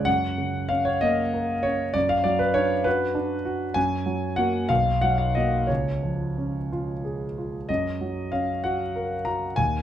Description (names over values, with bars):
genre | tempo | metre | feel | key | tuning
classical, romantic character piece for solo piano | 58-67 BPM (dotted quarters) | 6/8 | rubato | F# major | A4 = 439 Hz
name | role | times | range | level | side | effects
warm concert grand piano | solo | 0.0-9.8 s | B1 to A#5 | -22 LUFS | equal | none
room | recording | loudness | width
moderate large studio reverb, RT60 0.8 s | dark, warm production | -22 LUFS | side -10 dB against mid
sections
0.1-9.8 A section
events
none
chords
0.1 F#; 1.9 Bmadd9/F#; 3.8 F#; 4.7 B5; 5.7 C#; 7.7 F#